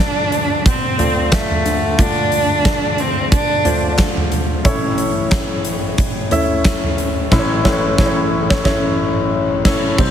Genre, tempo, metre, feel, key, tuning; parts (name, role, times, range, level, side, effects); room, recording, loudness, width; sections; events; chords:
piano-driven pop; 90 BPM; 4/4; swing 56% on 16ths; A4 = 440 Hz
rich cello; melody; 0.0-4.0 s; A3 to D4; -18 LUFS; right 1 dB
warm concert grand piano; accompaniment; 0.0-10.1 s; A1 to E5; -18 LUFS; left 1 dB
huge arena drum kit; drums; 0.3-10.1 s; crash cymbal, handclaps, hi-hat, kick drum, snare drum, toms; -17 LUFS; right 1 dB
moderate recital hall reverb, RT60 1.7 s, small room ambience; heavily compressed radio sound; -14 LUFS; side -9 dB against mid
0.0-10.0 A section
band accent 7.3-10.0
0.0 Dm; 4.7 A